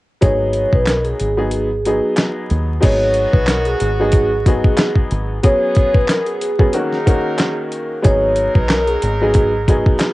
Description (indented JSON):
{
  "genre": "hip hop, boom-bap hip-hop",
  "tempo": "92 BPM",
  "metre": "4/4",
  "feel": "swing 54% on 16ths",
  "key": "G# minor",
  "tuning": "A4 = 438 Hz",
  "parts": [
    { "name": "vibraphone with soft mallets", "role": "melody", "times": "0.2-10.1 s", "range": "G#4 to C#5", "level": "-19 LUFS", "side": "right 1 dB", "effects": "high-pass filter, low-pass filter, cassette tape, tape echo" },
    { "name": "warm upright piano", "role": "accompaniment", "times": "0.2-10.1 s", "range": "D#3 to G#4", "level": "-20 LUFS", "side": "left 1 dB", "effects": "cassette tape, high-pass filter, low-pass filter" },
    { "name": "deep dub fingered electric bass", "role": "bass", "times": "0.2-9.8 s", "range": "G#1 to D#2", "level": "-20 LUFS", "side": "equal", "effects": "none" },
    { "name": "dusty soul sampler-style drum kit", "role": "drums", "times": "0.2-10.1 s", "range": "crash cymbal, handclaps, hi-hat, kick drum, snare drum", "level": "-15 LUFS", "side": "equal", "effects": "cassette tape" },
    { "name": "bright trumpet section", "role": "stabs", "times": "2.8-10.1 s", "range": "F#3 to A#4", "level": "-28 LUFS", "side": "right 1 dB", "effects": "high-pass filter, low-pass filter, cassette tape, tape echo" }
  ],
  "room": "little or no reverb",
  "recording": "home recording on cassette, vinyl crackle, nothing above 10.4 kHz",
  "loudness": "-13 LUFS",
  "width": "side -18 dB against mid",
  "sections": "0.2-2.8 A section; 2.8-10.1 B section",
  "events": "break 1.5-2.8",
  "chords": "0.2 G#m7; 5.4 C#7sus4; 6.7 D#m7; 8.0 G#m7"
}